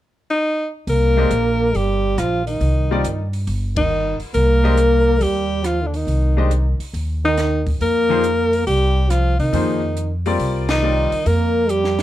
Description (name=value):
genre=modal jazz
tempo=139 BPM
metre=4/4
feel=swing 68% on 8ths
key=C minor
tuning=A4 = 438 Hz
part: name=clear alto saxophone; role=melody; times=0.3-12.0 s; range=D4 to Bb4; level=-20 LUFS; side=left 2 dB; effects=none
part: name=warm trombone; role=second line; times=0.9-12.0 s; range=D3 to Bb3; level=-22 LUFS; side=right 5 dB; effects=none
part: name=upright bass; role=bass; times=0.9-12.0 s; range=G1 to C3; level=-19 LUFS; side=equal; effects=none
part: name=compact cocktail drum kit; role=drums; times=0.9-12.0 s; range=hi-hat, kick drum, ride cymbal, rim click, snare drum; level=-30 LUFS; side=equal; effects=none
part: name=bright upright piano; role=accompaniment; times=1.2-11.1 s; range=F3 to Eb5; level=-23 LUFS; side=left 4 dB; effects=none
room=little or no reverb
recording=close, detailed microphones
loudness=-16 LUFS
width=side -14 dB against mid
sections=0.9-12.0 A section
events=band accent 3.7, 10.6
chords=0.0 N.C.; 0.9 Cm7; 7.8 F9sus4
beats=0.00 0.44 | 0.87 1.31 1.74 2.17 | 2.61 3.04 3.48 3.91 | 4.34 4.78 5.21 5.64 | 6.07 6.50 6.94 7.37 | 7.80 8.23 8.67 9.10 | 9.53 9.96 10.39 10.82 | 11.26 11.69